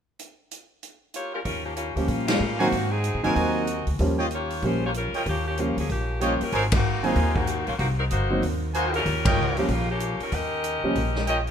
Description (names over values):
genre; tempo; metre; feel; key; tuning
jazz, big band swing; 189 BPM; 4/4; swing 62% on 8ths; Eb mixolydian; A4 = 440 Hz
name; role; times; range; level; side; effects
swinging big-band drum kit; drums; 0.2-11.5 s; hi-hat, kick drum, ride cymbal, snare drum; -30 LUFS; left 1 dB; none
bright saxophone section; melody; 1.1-11.4 s; Eb3 to Eb5; -28 LUFS; left 1 dB; none
upright bass; bass; 1.5-11.5 s; G1 to Bb2; -28 LUFS; equal; none
warm concert grand piano; accompaniment; 2.0-11.0 s; Eb3 to Db4; -28 LUFS; equal; none
clear trumpet section; stabs; 2.6-11.4 s; F4 to Ab5; -29 LUFS; right 2 dB; none
room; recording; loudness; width
light reverb; minimal, uncompressed stereo recording; -22 LUFS; side -8 dB against mid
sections
0.2-1.5 A section; 1.5-11.5 B section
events
band accent 2.3, 6.7, 9.2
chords
0.2 N.C.; 1.5 Eb9; 2.7 Ab9; 4.0 Eb9; 6.5 Ab9; 9.1 Eb9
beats
| 0.19 0.51 0.82 1.14 | 1.46 1.78 2.09 2.41 | 2.73 3.04 3.36 3.68 | 3.99 4.31 4.63 4.95 | 5.26 5.58 5.89 6.21 | 6.53 6.84 7.16 7.48 | 7.79 8.11 8.43 8.74 | 9.06 9.38 9.69 10.01 | 10.33 10.64 10.96 11.28